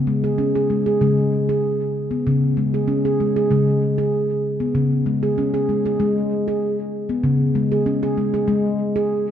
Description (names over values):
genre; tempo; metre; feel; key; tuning
world meditative, meditative tuned percussion; 96 BPM; 4/4; straight; unclear; A4 = 440 Hz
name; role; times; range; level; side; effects
handpan; solo; 0.0-9.3 s; C#3 to G#4; -18 LUFS; equal; diffuse ambient delay
room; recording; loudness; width
wet scoring stage reverb, RT60 2.1 s; dark, warm production; -18 LUFS; side -9 dB against mid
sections
0.0-9.3 A section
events
none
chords
0.0 C#5